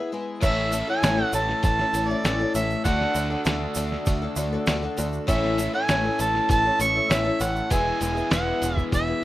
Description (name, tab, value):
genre	folk rock and heartland rock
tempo	99 BPM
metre	4/4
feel	straight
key	unclear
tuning	A4 = 440 Hz
part	picked twelve-string acoustic guitar	accompaniment	0.0-9.2 s	A2 to A4	-27 LUFS	left 3 dB	none
part	mellow harmonica	melody	0.4-9.2 s	D5 to C#6	-24 LUFS	right 2 dB	none
part	overdriven electric guitar	riff	0.4-9.2 s	E2 to F#4	-32 LUFS	equal	spring reverb
part	picked electric bass	bass	0.4-9.1 s	E1 to D2	-29 LUFS	right 1 dB	none
part	lo-fi sampler-style drum kit	drums	0.4-9.1 s	crash cymbal, hi-hat, kick drum, snare drum	-26 LUFS	right 1 dB	none
part	tube shaker	percussion	0.4-9.1 s	none	-37 LUFS	right 5 dB	none
room	small room ambience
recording	rough home demo mix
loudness	-21 LUFS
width	side -15 dB against mid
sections	0.0-9.2 A section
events	none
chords	0.4 A; 2.9 D; 5.3 A; 7.7 E